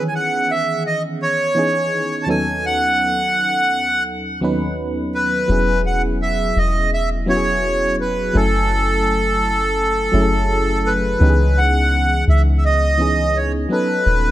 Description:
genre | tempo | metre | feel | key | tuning
contemporary R&B | 84 BPM | 4/4 | straight | C# minor | A4 = 441 Hz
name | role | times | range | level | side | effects
accordion | melody | 0.0-14.3 s | A4 to A5 | -18 LUFS | right 1 dB | tape echo
FM electric piano with tremolo | accompaniment | 0.0-14.3 s | D#2 to G#5 | -22 LUFS | equal | none
soft 808-style bass | bass | 5.5-14.3 s | D#1 to C#2 | -18 LUFS | equal | none
room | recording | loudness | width
light reverb, small room ambience | none | -15 LUFS | side -14 dB against mid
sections
0.0-14.3 A section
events
none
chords
0.0 C#m7; 2.3 B7/D#; 5.5 E6; 8.3 F#m7; 11.2 C#m7; 13.7 B7

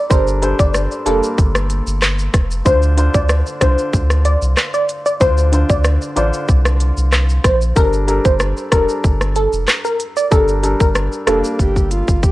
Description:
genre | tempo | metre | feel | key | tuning
dancehall | 94 BPM | 4/4 | straight | unclear | A4 = 437 Hz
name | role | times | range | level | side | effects
glassy wavetable pluck | melody | 0.0-11.5 s | A4 to D5 | -18 LUFS | equal | chorus, analog delay
warm grand piano | accompaniment | 0.0-12.3 s | D3 to C5 | -22 LUFS | left 1 dB | sidechain pumping
warm sub bass | bass | 0.1-12.3 s | F1 to D2 | -17 LUFS | equal | none
island pop drum kit | drums | 0.1-12.3 s | handclaps, hi-hat, kick drum, rim click, shaker | -16 LUFS | equal | none
breathy flute-like synth lead | second line | 11.6-12.3 s | F4 to G4 | -22 LUFS | right 1 dB | chorus, analog delay
room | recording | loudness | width
digital ambience | dry, gritty hardware recording, cassette tape | -13 LUFS | side -17 dB against mid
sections
0.0-12.3 A section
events
drum fill 11.6-12.3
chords
0.0 Gmadd9; 2.7 Dm7; 7.8 Gmadd9

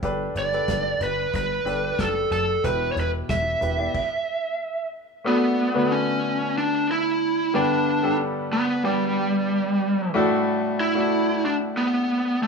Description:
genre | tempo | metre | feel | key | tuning
piano-driven pop | 92 BPM | 4/4 | straight | B minor | A4 = 438 Hz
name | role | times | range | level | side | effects
clear baby grand piano | accompaniment | 0.0-12.5 s | G2 to D5 | -25 LUFS | left 2 dB | none
plucky analog bass | bass | 0.0-3.9 s | E1 to G1 | -29 LUFS | equal | none
loose indie drum kit | drums | 0.0-4.1 s | crash cymbal, hi-hat, kick drum, snare drum | -33 LUFS | left 1 dB | none
lead guitar through a small cranked amp | melody | 0.4-12.5 s | G3 to E5 | -23 LUFS | right 1 dB | overdrive
room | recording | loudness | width
small room ambience | rough home demo mix | -21 LUFS | side -4 dB against mid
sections
0.0-5.3 A section; 5.3-12.5 B section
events
stop 3.9-5.3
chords
0.0 Gadd9; 2.6 Em; 3.9 N.C.; 5.3 Bm7; 7.5 G; 10.1 Dadd9

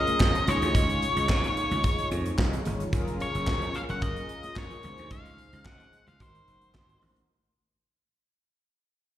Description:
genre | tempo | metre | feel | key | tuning
early-eighties boogie funk | 110 BPM | 4/4 | straight | Db major | A4 = 441 Hz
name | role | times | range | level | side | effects
octave-fuzz lead guitar | melody | 0.0-7.0 s | C5 to Gb5 | -30 LUFS | left 1 dB | distortion, slapback echo, plate reverb
mellow synth brass | accompaniment | 0.0-7.3 s | F3 to Db5 | -34 LUFS | equal | chorus, plate reverb, slapback echo
modern studio drum kit | drums | 0.1-7.3 s | handclaps, hi-hat, kick drum, snare drum | -28 LUFS | equal | none
congas | percussion | 0.1-7.2 s | none | -39 LUFS | equal | slapback echo
slap bass | bass | 0.2-7.2 s | Gb1 to Db3 | -31 LUFS | equal | none
room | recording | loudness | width
light reverb | live gig heard through the venue's PA, recital hall reverb | -24 LUFS | side -12 dB against mid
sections
0.0-7.3 A section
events
fade-out 0.0-7.3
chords
0.5 Db; 2.9 Gbmaj9; 4.8 Dbmaj7; 6.2 Ab7

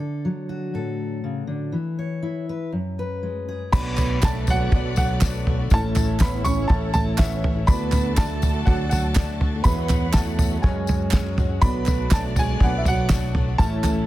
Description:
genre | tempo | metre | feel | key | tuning
indie folk with a building arrangement | 122 BPM | 4/4 | straight | unclear | A4 = 440 Hz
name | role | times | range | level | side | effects
fingerpicked steel-string acoustic guitar | accompaniment | 0.0-3.7 s | F#2 to C#5 | -26 LUFS | left 2 dB | none
dark upright piano | melody | 3.7-14.1 s | E5 to C#6 | -28 LUFS | right 1 dB | analog delay
mellow French horn | second line | 3.7-14.0 s | E3 to C#4 | -30 LUFS | right 6 dB | analog delay
felt-muted upright piano | accompaniment | 3.7-14.1 s | F#1 to F#5 | -35 LUFS | left 6 dB | none
picked old ladder-braced acoustic guitar | accompaniment | 3.7-14.1 s | E2 to F#4 | -34 LUFS | left 6 dB | none
warm studio string section | sustained chords | 3.7-14.1 s | D3 to A5 | -35 LUFS | equal | none
fingered electric bass | bass | 3.7-14.1 s | A1 to F#2 | -25 LUFS | equal | none
cloth-damped thuddy drum kit | drums | 3.7-14.0 s | crash cymbal, kick drum, snare drum, toms | -21 LUFS | equal | none
tambourine | percussion | 3.7-14.0 s | none | -39 LUFS | left 12 dB | none
group handclap | percussion | 4.0-14.0 s | none | -31 LUFS | right 8 dB | none
room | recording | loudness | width
little or no reverb | dense, heavily limited modern master | -20 LUFS | side -15 dB against mid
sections
0.0-3.7 A section; 3.7-14.1 B section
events
none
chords
0.0 D; 1.7 E5; 2.7 F#sus2; 3.7 Bm7; 5.7 A; 7.7 D; 9.6 Eadd9; 10.6 F#sus2; 11.6 Bm7

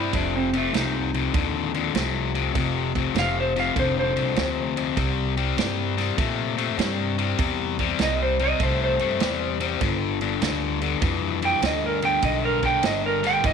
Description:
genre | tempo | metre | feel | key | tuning
electric blues shuffle | 99 BPM | 4/4 | swing 66% on 8ths | unclear | A4 = 440 Hz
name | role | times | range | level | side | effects
clean lap steel guitar | melody | 0.0-13.5 s | A3 to G5 | -25 LUFS | right 3 dB | none
cranked stack guitar | riff | 0.0-13.5 s | F2 to A3 | -25 LUFS | left 14 dB | overdrive
upright bass | bass | 0.0-13.5 s | F1 to Bb2 | -28 LUFS | right 1 dB | none
vintage drum kit | drums | 0.1-13.5 s | kick drum, ride cymbal, snare drum | -29 LUFS | right 5 dB | none
room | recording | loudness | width
light reverb, small room ambience | 1960s-style stereo | -21 LUFS | side -6 dB against mid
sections
0.0-13.5 A section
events
electric slide guitar solo 0.0-13.5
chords
0.1 F5; 5.0 C; 9.8 G7

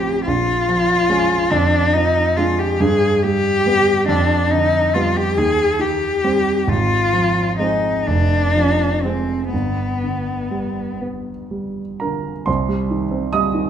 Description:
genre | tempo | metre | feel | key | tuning
classical, romantic duo for cello and grand piano | 40-49 BPM (dotted quarters) | 6/8 | rubato | C minor | A4 = 443 Hz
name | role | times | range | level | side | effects
rich cello | melody | 0.0-11.0 s | B3 to Ab4 | -17 LUFS | left 2 dB | none
dark grand piano | accompaniment | 0.0-13.7 s | F1 to Eb6 | -19 LUFS | right 2 dB | none
room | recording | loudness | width
moderate recital hall reverb, RT60 1.5 s | minimal, uncompressed stereo recording | -16 LUFS | side -9 dB against mid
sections
0.0-12.5 A section; 12.5-13.7 B section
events
none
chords
0.3 Bbm7; 1.5 Ddim/F; 2.8 G; 4.1 G7/F; 5.4 Cm/Eb; 6.7 Fm/Ab; 8.1 Fm; 9.5 G; 12.5 Cm

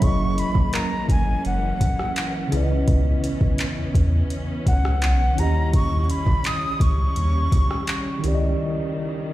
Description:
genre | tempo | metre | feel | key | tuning
contemporary R&B | 84 BPM | 4/4 | straight | unclear | A4 = 440 Hz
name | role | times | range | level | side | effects
breathy reedy jazz flute | melody | 0.0-8.2 s | F#5 to D#6 | -28 LUFS | equal | ping-pong delay
mellow tine electric piano | accompaniment | 0.0-9.3 s | C#3 to E5 | -27 LUFS | right 1 dB | medium stereo tremolo
rich studio string section | sustained chords | 0.0-9.3 s | C#3 to C#4 | -31 LUFS | equal | sidechain pumping
warm sub bass | bass | 0.0-8.5 s | F#1 to E2 | -21 LUFS | equal | none
smooth R&B drum kit | drums | 0.0-8.4 s | handclaps, hi-hat, kick drum, rim click | -22 LUFS | equal | none
mallet-like synth pluck | texture | 0.7-5.2 s | G#4 to A#4 | -40 LUFS | left 3 dB | none
room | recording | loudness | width
little or no reverb | played on a big sound system in a bare room, large studio reverb | -19 LUFS | side -15 dB against mid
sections
0.0-9.3 A section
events
break 8.6-9.3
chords
0.0 F#13; 2.5 C#m9; 5.4 D#7b9

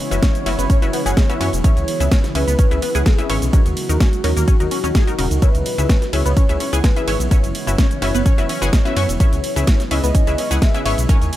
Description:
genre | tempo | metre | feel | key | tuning
progressive house | 127 BPM | 4/4 | straight | C# dorian | A4 = 439 Hz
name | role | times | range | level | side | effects
soft octave-layered synth lead | melody | 0.0-11.4 s | F#4 to G#5 | -26 LUFS | equal | chorus, phaser, digital delay
shimmering ambient pad | sustained chords | 0.0-11.4 s | A#2 to F#4 | -28 LUFS | equal | chorus, built-in reverb, sidechain pumping
wide unison pluck | stabs | 0.0-11.4 s | C#4 to F#5 | -26 LUFS | left 3 dB | sidechain pumping, digital delay
dark detuned saw bass | bass | 0.1-11.3 s | D#1 to F#2 | -20 LUFS | equal | sidechain pumping
house drum kit | drums | 0.1-11.4 s | cabasa, hi-hat, ride cymbal, snare drum | -25 LUFS | equal | none
tight sequenced synth | arpeggios | 0.2-11.2 s | C#3 to C#6 | -26 LUFS | right 1 dB | chorus, phaser, sidechain pumping, digital delay
electronic kick drum | drums | 0.2-11.2 s | none | -14 LUFS | equal | none
room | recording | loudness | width
little or no reverb | none | -14 LUFS | side -14 dB against mid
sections
0.0-11.4 A section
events
none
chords
0.0 F#7sus4; 1.6 C#m7; 3.5 D#m; 5.4 C#m7; 7.3 F#7sus4; 9.2 C#m7

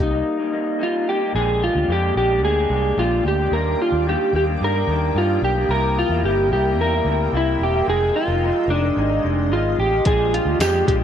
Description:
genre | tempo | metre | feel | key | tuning
indie pop, bedroom pop | 110 BPM | 4/4 | straight | unclear | A4 = 439 Hz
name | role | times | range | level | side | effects
electric slide guitar | melody | 0.0-11.0 s | D4 to Bb4 | -20 LUFS | right 1 dB | analog chorus, slapback echo
electric guitar through a small old amp | accompaniment | 0.0-11.0 s | F2 to G4 | -25 LUFS | left 5 dB | lush chorus, warbly pitch drift
vintage muted fingered electric bass | bass | 0.0-11.0 s | E1 to G2 | -22 LUFS | equal | none
shimmering ambient pad | sustained chords | 2.3-11.0 s | Ab3 to E6 | -30 LUFS | right 1 dB | chorus, built-in reverb
lo-fi sampler-style drum kit | drums | 10.1-11.0 s | hi-hat, kick drum, snare drum | -21 LUFS | equal | none
tambourine | percussion | 10.6-10.7 s | none | -33 LUFS | right 17 dB | none
room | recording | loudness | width
light reverb, digital ambience | none | -17 LUFS | side -9 dB against mid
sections
0.0-1.4 A section; 1.4-11.0 B section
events
break 0.3-1.4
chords
0.0 Cm7; 1.4 Bb13; 3.5 Ebmaj7; 5.7 C7; 7.9 Fm7; 10.1 Bb13

